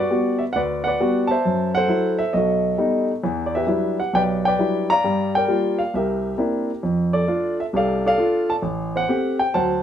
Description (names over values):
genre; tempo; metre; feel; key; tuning
solo jazz; 134 BPM; 4/4; swing 67% on 8ths; G major; A4 = 440 Hz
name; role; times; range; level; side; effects
warm grand piano; solo; 0.0-9.8 s; A1 to Bb5; -18 LUFS; equal; none
room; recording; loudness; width
moderate studio reverb, RT60 0.8 s; band playing live in one room; -18 LUFS; side -9 dB against mid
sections
0.0-9.8 A section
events
none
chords
0.0 Gmaj7; 1.4 F#m7b5; 2.3 B7b13; 3.2 Em9; 5.0 Gm7; 5.9 C9; 6.8 F6; 8.6 Am7